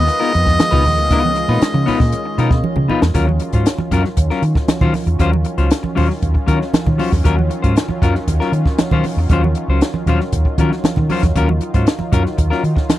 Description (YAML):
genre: funk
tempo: 117 BPM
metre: 4/4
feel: straight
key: Eb minor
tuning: A4 = 440 Hz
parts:
  - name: warm harmonica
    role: melody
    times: 0.0-2.6 s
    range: Eb5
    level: -19 LUFS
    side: equal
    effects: tape echo
  - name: clean electric guitar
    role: accompaniment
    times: 0.0-12.9 s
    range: Gb3 to C5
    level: -19 LUFS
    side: left 4 dB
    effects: none
  - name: lush unison pad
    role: sustained chords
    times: 0.0-13.0 s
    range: Eb3 to F4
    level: -25 LUFS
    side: equal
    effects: chorus
  - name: vintage muted fingered electric bass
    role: bass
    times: 0.0-12.8 s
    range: Db2 to Eb3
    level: -16 LUFS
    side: equal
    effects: none
  - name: compact cocktail drum kit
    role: drums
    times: 0.1-13.0 s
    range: hi-hat, kick drum, snare drum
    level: -17 LUFS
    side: equal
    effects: none
  - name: congas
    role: percussion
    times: 0.6-13.0 s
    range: none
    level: -24 LUFS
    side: right 6 dB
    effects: none
room: little or no reverb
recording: dry, close 1970s-style studio recording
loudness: -13 LUFS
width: side -14 dB against mid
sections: 0.0-3.2 A section; 3.2-13.0 B section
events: drum fill 2.6-3.2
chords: 0.0 Db13; 3.2 Ebm9